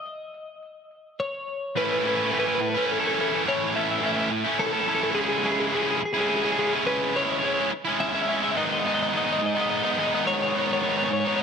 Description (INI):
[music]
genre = rock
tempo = 106 BPM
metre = 3/4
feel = straight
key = A lydian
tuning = A4 = 439 Hz
[part]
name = twelve-string electric guitar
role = melody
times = 0.0-11.4 s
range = G#4 to E5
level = -26 LUFS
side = left 2 dB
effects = none
[part]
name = distorted electric guitar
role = riff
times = 1.8-11.4 s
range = G#2 to E4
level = -24 LUFS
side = right 1 dB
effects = overdrive
[sound]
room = light reverb, digital ambience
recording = none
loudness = -22 LUFS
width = side -6 dB against mid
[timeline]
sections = 0.0-1.8 A section; 1.8-11.4 B section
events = none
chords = 0.0 N.C.; 1.8 A; 5.2 C#m; 8.6 G#m